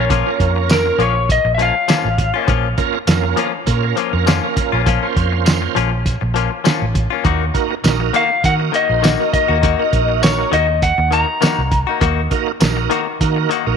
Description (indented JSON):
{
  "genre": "straight-eighth soul blues",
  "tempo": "101 BPM",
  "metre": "4/4",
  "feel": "swing 55% on 16ths",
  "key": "Bb minor",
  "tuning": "A4 = 441 Hz",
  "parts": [
    { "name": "lightly driven lead guitar", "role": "melody", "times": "0.0-2.5, 8.2-12.0 s", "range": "Bb4 to Bb5", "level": "-17 LUFS", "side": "left 2 dB", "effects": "none" },
    { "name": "bright tonewheel organ", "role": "accompaniment", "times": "0.0-13.8 s", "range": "Bb3 to C5", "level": "-21 LUFS", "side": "right 14 dB", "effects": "slow rotary speaker, overdrive, chorus vibrato" },
    { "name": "direct-recorded clean electric guitar", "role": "stabs", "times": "0.0-13.7 s", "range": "Eb3 to Gb4", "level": "-21 LUFS", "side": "left 12 dB", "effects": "spring reverb" },
    { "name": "vintage muted fingered electric bass", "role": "bass", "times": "0.0-13.8 s", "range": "A1 to Eb3", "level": "-19 LUFS", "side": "right 1 dB", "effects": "none" },
    { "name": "cloth-damped thuddy drum kit", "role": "drums", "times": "0.1-13.7 s", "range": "hi-hat, kick drum, snare drum, tambourine", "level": "-18 LUFS", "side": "right 1 dB", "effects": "none" }
  ],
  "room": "light reverb, small room ambience",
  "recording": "1960s-style stereo with parts hard left and right",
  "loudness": "-14 LUFS",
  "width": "side -6 dB against mid",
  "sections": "0.0-13.8 A section",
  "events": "none",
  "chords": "0.0 Bbm; 7.2 Ebm"
}